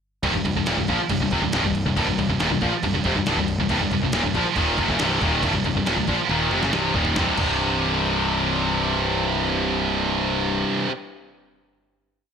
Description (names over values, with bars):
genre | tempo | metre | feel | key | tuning
heavy metal | 138 BPM | 4/4 | straight | C minor | A4 = 440 Hz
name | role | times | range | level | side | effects
heavy high-gain guitar | riff | 0.2-10.9 s | C2 to F3 | -24 LUFS | right 9 dB | distortion
tight distorted guitar | riff | 0.2-10.9 s | C2 to F3 | -26 LUFS | left 10 dB | distortion
tight distorted guitar | riff | 0.2-10.9 s | C2 to Eb4 | -28 LUFS | left 1 dB | distortion
fuzz picked electric bass | bass | 0.2-10.6 s | C1 to Bb1 | -28 LUFS | equal | overdrive
dusty soul sampler-style drum kit | drums | 0.2-7.5 s | crash cymbal, kick drum, snare drum, toms | -27 LUFS | equal | gated reverb
room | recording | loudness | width
light reverb | bright 1980s-style digital production | -20 LUFS | side -7 dB against mid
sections
0.2-7.2 riff; 7.2-10.6 final chord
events
drum fill 6.3-7.2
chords
0.2 Cm